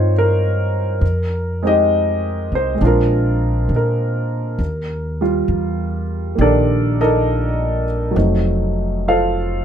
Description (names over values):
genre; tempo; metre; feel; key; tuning
jazz ballad; 67 BPM; 4/4; swing 68% on 8ths; unclear; A4 = 440 Hz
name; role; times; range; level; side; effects
warm concert grand piano; accompaniment; 0.0-9.6 s; Eb3 to F5; -18 LUFS; right 1 dB; none
upright bass; bass; 0.0-9.6 s; F1 to Bb2; -19 LUFS; equal; none
room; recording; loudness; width
little or no reverb; close, detailed microphones; -15 LUFS; side -8 dB against mid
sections
0.0-9.6 A section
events
none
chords
0.0 Cm7; 1.0 Fm9; 2.8 Bb9; 4.6 Ebmaj9#11; 8.1 F7b9